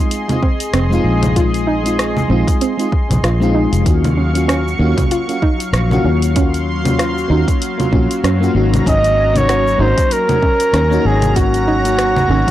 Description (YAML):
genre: sunset chillout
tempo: 96 BPM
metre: 4/4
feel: swing 57% on 16ths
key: Eb dorian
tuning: A4 = 440 Hz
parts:
  - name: mellow FM electric piano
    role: accompaniment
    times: 0.0-12.5 s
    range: Ab3 to Gb4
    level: -20 LUFS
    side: moving between left 5 dB and right 4 dB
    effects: chorus, auto-pan, analog delay
  - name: lush unison pad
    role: sustained chords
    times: 0.0-12.5 s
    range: Gb3 to Db6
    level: -22 LUFS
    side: left 2 dB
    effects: chorus
  - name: soft round pluck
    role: arpeggios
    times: 0.0-12.5 s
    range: C4 to Gb4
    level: -23 LUFS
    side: right 2 dB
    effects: chorus, analog delay
  - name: deep house drum kit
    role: drums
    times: 0.1-12.5 s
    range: congas, hi-hat, rim click, shaker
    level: -21 LUFS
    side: equal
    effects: none
  - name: electronic kick drum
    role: drums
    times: 0.4-12.5 s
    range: none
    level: -16 LUFS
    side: equal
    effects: none
  - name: fingered electric bass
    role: bass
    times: 0.7-12.4 s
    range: F1 to Gb2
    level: -16 LUFS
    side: equal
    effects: none
  - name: warm flugelhorn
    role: melody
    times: 8.9-12.5 s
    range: Gb4 to Eb5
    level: -15 LUFS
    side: right 1 dB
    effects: tape echo
room: digital ambience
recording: dry, gritty hardware recording, transformer saturation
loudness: -12 LUFS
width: side -13 dB against mid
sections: 0.0-12.5 A section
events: none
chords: 0.0 Bb9sus4; 3.9 Ebm9; 8.6 Ab9sus4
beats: 0.11 0.74 | 1.36 1.99 2.61 3.24 | 3.86 4.49 5.11 5.74 | 6.36 6.99 7.61 8.24 | 8.86 9.49 10.11 10.74 | 11.36 11.99